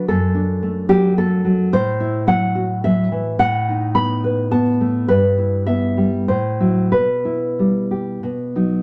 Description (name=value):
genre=romantic piece for solo classical guitar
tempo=91-111 BPM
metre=3/4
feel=rubato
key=E minor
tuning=A4 = 439 Hz
part: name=nylon-string guitar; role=solo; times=0.0-8.8 s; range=F#2 to B5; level=-18 LUFS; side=equal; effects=none
room=moderate studio reverb, RT60 0.7 s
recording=none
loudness=-18 LUFS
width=mono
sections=0.0-8.8 A section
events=none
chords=0.1 D/F#; 1.7 F#m7b5/A; 3.4 B7/A; 5.1 Em/G; 6.3 F#m7b5/A; 6.9 Em/B; 8.2 B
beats=| 0.08 0.63 1.18 | 1.73 2.28 2.84 | 3.40 3.96 4.51 | 5.08 5.66 6.28 | 6.92 7.58 8.23